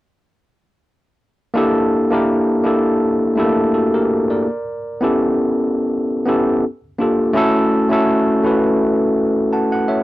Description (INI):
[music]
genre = soul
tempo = 83 BPM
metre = 4/4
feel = swing 54% on 16ths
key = unclear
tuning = A4 = 440 Hz
[part]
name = overdriven tine electric piano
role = accompaniment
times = 1.5-10.0 s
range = A3 to A5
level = -14 LUFS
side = equal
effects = none
[sound]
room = light reverb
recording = dry, close 1970s-style studio recording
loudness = -14 LUFS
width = side -17 dB against mid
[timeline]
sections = 1.6-10.0 A section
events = none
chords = 1.6 Gm6; 4.5 A7; 6.6 Gm7; 7.4 F#m7